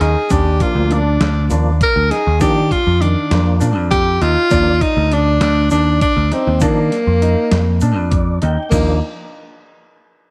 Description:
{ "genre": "progressive instrumental, band music in an uneven meter", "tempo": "200 BPM (eighths)", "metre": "7/8", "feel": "straight", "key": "Eb major", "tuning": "A4 = 440 Hz", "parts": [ { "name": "breathy tenor saxophone", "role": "melody", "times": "0.0-9.0 s", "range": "Bb3 to Bb4", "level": "-19 LUFS", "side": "equal", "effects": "none" }, { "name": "felt-muted upright piano", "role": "arpeggios", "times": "0.0-9.0 s", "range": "Eb3 to D5", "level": "-26 LUFS", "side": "equal", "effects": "none" }, { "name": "picked electric bass", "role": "bass", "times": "0.0-9.0 s", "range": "D2 to Eb3", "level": "-18 LUFS", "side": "equal", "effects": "none" }, { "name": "dusty soul sampler-style drum kit", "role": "drums", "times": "0.0-8.9 s", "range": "crash cymbal, hi-hat, kick drum, snare drum", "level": "-23 LUFS", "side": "equal", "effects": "none" }, { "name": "egg shaker", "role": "percussion", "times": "0.3-9.0 s", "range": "none", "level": "-38 LUFS", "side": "equal", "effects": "none" }, { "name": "tonewheel organ", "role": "accompaniment", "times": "0.6-9.0 s", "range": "F3 to G5", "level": "-28 LUFS", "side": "equal", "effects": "chorus vibrato, stopped rotary speaker" } ], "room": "light reverb, digital ambience", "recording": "none", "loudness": "-15 LUFS", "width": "mono", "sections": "0.0-8.7 A section; 8.7-10.3 B section", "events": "tonewheel organ fill 7.8-8.7", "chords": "0.3 Ebmaj7sus2/D; 8.7 Eb5", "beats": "0.01 | 0.31 0.61 0.91 1.21 1.51 1.81 2.11 | 2.41 2.71 3.01 3.31 3.61 3.91 4.21 | 4.51 4.81 5.11 5.41 5.71 6.01 6.31 | 6.61 6.91 7.21 7.51 7.81 8.12 8.41 | 8.71" }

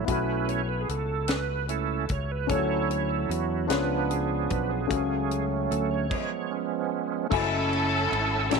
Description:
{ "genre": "slow gospel", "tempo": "50 BPM (dotted quarters)", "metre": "6/8", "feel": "straight", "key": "F# minor", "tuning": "A4 = 440 Hz", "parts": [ { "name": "dark grand piano", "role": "accompaniment", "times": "0.0-8.6 s", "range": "A2 to G#5", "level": "-31 LUFS", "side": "left 15 dB", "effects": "none" }, { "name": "bright tonewheel organ", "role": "sustained chords", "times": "0.0-8.6 s", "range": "E#3 to E6", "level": "-28 LUFS", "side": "right 9 dB", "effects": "fast rotary speaker, overdrive, chorus vibrato" }, { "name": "fingered electric bass", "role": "bass", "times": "0.0-8.6 s", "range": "F#1 to E2", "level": "-31 LUFS", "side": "left 1 dB", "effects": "none" }, { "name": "tight funk drum kit", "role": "drums", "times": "0.1-8.6 s", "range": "crash cymbal, hi-hat, kick drum, ride cymbal, snare drum", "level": "-32 LUFS", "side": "left 2 dB", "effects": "none" }, { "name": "clear studio string section", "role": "melody", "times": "7.3-8.6 s", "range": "C#4 to A4", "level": "-26 LUFS", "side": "left 1 dB", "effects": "slapback echo" } ], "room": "moderate echo chamber reverb, RT60 2.3 s", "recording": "1960s-style stereo with parts hard left and right", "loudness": "-25 LUFS", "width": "side -4 dB against mid", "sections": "0.0-7.3 A section; 7.3-8.6 B section", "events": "tonewheel organ solo 0.0-7.3; stop 6.1-7.3", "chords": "0.1 B7sus4; 2.5 Dmaj7; 3.7 C#7b9; 4.9 F#m/C#; 6.1 C#7; 7.3 F#m9", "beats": "| 0.09 1.29 | 2.50 3.71 | 4.91 6.11 | 7.32 8.52" }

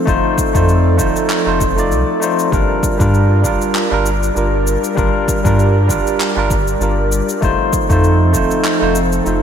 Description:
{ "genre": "sunset chillout", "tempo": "98 BPM", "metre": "4/4", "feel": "swing 55% on 16ths", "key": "G minor", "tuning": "A4 = 441 Hz", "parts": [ { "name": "barky tine electric piano", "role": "accompaniment", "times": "0.0-9.4 s", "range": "G3 to D5", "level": "-17 LUFS", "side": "moving between left 5 dB and right 5 dB", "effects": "auto-pan, digital delay" }, { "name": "airy breathy pad", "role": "sustained chords", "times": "0.0-9.4 s", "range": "F3 to D5", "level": "-20 LUFS", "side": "equal", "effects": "chorus" }, { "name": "warm sub bass", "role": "bass", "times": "0.1-9.4 s", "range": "Eb1 to G2", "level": "-16 LUFS", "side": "equal", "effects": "none" }, { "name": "electronic kick drum", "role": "drums", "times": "0.1-8.5 s", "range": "none", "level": "-20 LUFS", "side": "equal", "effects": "none" }, { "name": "electronic shaker and handclaps", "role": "drums", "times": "0.1-9.4 s", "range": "none", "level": "-24 LUFS", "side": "left 1 dB", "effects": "gated reverb" } ], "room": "moderate lush hall reverb, RT60 2.2 s", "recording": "bright 1980s-style digital production", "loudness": "-12 LUFS", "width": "side -8 dB against mid", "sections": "0.0-9.4 A section", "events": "none", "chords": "0.0 F7; 2.5 Gm7; 7.4 F7", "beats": "| 0.08 0.69 1.30 1.91 | 2.53 3.14 3.75 4.36 | 4.97 5.59 6.20 6.81 | 7.42 8.04 8.65 9.26" }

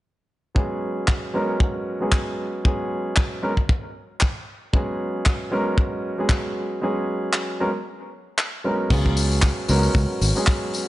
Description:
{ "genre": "nu-disco, nu disco", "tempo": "115 BPM", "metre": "4/4", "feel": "swing 56% on 16ths", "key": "unclear", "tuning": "A4 = 440 Hz", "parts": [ { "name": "warm grand piano", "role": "accompaniment", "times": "0.5-10.9 s", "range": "Gb3 to Bb4", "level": "-25 LUFS", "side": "right 1 dB", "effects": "sidechain pumping, low-pass filter, tape echo" }, { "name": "kick drum", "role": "drums", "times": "0.6-10.6 s", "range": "none", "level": "-20 LUFS", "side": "equal", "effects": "none" }, { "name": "tight funk drum kit", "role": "drums", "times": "1.1-10.9 s", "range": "crash cymbal, handclaps, hi-hat, tambourine", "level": "-26 LUFS", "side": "left 1 dB", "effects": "none" }, { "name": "fingered electric bass", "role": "bass", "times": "8.9-10.3 s", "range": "Ab1 to Db2", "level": "-20 LUFS", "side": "equal", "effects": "tube saturation, sidechain pumping" } ], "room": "light reverb, small room ambience", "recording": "dry, gritty hardware recording, nothing above 10.9 kHz", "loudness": "-20 LUFS", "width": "side -16 dB against mid", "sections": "0.6-8.9 A section; 8.9-10.9 B section", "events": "break 6.8-8.9", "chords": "0.6 Db7sus4", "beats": "| 0.56 1.08 1.60 2.13 | 2.65 3.17 3.69 4.21 | 4.74 5.26 5.78 6.30 | 6.82 7.34 7.87 8.39 | 8.91 9.43 9.95 10.47" }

